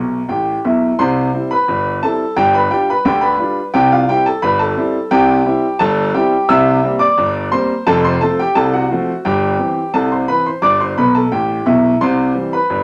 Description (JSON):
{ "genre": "ragtime piano", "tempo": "87 BPM", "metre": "2/4", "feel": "straight", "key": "C major", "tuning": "A4 = 440 Hz", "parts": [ { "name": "clear concert grand piano", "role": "solo", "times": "0.0-12.8 s", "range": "F1 to E6", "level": "-15 LUFS", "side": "equal", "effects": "none" } ], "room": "wet studio reverb, RT60 0.5 s", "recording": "none", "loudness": "-15 LUFS", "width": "mono", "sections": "1.0-12.8 A section", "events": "grand piano fill 0.0-1.0, 11.0-12.0", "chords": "0.0 C; 2.4 G7; 3.7 C; 6.5 C7; 7.9 F; 9.2 C/G; 10.6 G; 12.0 C" }